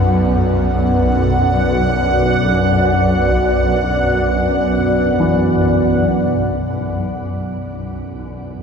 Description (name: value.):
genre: dark ambient drone.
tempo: free time.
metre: none.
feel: none.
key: B minor.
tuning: A4 = 440 Hz.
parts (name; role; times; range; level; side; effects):
deep dark ambient pad; sustained chords; 0.0-8.6 s; B3 to D5; -18 LUFS; equal; chorus, built-in reverb, shimmer reverb.
dark grand piano; arpeggios; 0.0-8.6 s; A2 to E3; -26 LUFS; left 1 dB; tape echo.
swarming drone; drone; 0.0-8.6 s; B1 to F#2; -17 LUFS; equal; built-in reverb.
bubbling stepped-filter texture; texture; 0.0-6.6 s; F#5; -22 LUFS; right 1 dB; chorus, built-in reverb, shimmer reverb.
room: wet huge ambient reverb, RT60 8.1 s.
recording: cassette tape.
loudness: -13 LUFS.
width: side -6 dB against mid.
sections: 0.0-6.6 A section; 6.6-8.6 B section.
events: none.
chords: 0.0 Bm.